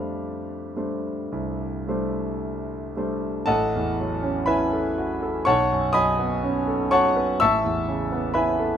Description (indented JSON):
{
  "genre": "classical, impressionist solo piano",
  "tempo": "53-64 BPM",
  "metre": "4/4",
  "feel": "rubato",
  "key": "F lydian, A lydian from 3.5 s",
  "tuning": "A4 = 439 Hz",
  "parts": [
    { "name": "clear concert grand piano", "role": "solo", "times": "0.0-8.8 s", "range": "A1 to F6", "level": "-22 LUFS", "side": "equal", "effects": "none" }
  ],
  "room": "light reverb",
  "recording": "minimal, uncompressed stereo recording",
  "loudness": "-21 LUFS",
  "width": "side -9 dB against mid",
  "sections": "0.0-3.5 A section; 3.5-8.8 B section",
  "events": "none",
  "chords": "0.0 F69; 3.5 A6; 5.5 B9; 7.4 Aadd9"
}